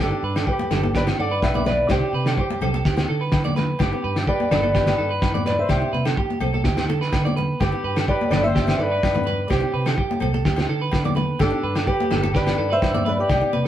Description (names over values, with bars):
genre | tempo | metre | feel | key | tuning
highlife guitar band | 126 BPM | 4/4 | straight | G major | A4 = 440 Hz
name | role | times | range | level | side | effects
fingerpicked old ladder-braced acoustic guitar | melody | 0.0-13.6 s | D4 to F#5 | -24 LUFS | equal | none
warm trumpet | second line | 0.0-13.6 s | D4 to D5 | -31 LUFS | left 3 dB | none
nylon-string guitar | accompaniment | 0.0-13.6 s | A3 to D4 | -32 LUFS | left 6 dB | none
electric guitar at the edge of break-up | arpeggios | 0.0-13.7 s | G4 to D5 | -27 LUFS | right 6 dB | none
fingered electric bass | bass | 0.0-13.7 s | G1 to D3 | -25 LUFS | right 1 dB | none
cloth-damped thuddy drum kit | drums | 0.0-13.7 s | kick drum, snare drum | -24 LUFS | equal | none
agogo bells | percussion | 0.4-13.4 s | none | -32 LUFS | left 1 dB | none
congas | percussion | 0.6-13.6 s | none | -28 LUFS | left 3 dB | none
room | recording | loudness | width
light reverb | band playing live in one room | -19 LUFS | side -11 dB against mid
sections
0.0-13.7 A section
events
none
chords
0.0 Gadd9; 1.9 C5; 2.8 D5; 3.8 Gadd9; 5.7 C5; 6.7 D5; 7.6 Gadd9; 9.5 C5; 10.5 D5; 11.4 Gadd9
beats
| 0.00 0.47 0.95 1.42 | 1.90 2.37 2.85 3.32 | 3.80 4.27 4.75 5.22 | 5.70 6.17 6.65 7.12 | 7.60 8.08 8.55 9.03 | 9.50 9.98 10.45 10.93 | 11.40 11.88 12.35 12.83 | 13.30